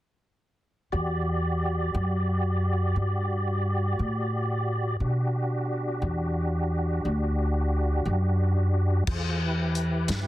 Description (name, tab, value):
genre	slow blues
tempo	59 BPM (dotted quarters)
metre	12/8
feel	straight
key	E minor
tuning	A4 = 440 Hz
part	tonewheel organ	sustained chords	0.9-10.3 s	D4 to D5	-30 LUFS	equal	slow rotary speaker, chorus vibrato
part	upright bass	bass	0.9-10.3 s	D2 to B2	-25 LUFS	equal	none
part	warm soul drum kit	drums	9.1-10.3 s	crash cymbal, hi-hat, kick drum, snare drum	-30 LUFS	left 2 dB	none
room	light reverb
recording	dense, heavily limited modern master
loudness	-24 LUFS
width	side -15 dB against mid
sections	0.9-9.1 A section; 9.1-10.3 B section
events	none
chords	0.9 Em7; 9.1 Em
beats	| 0.93 1.95 2.97 3.99 | 5.01 6.03 7.04 8.06 | 9.07 10.09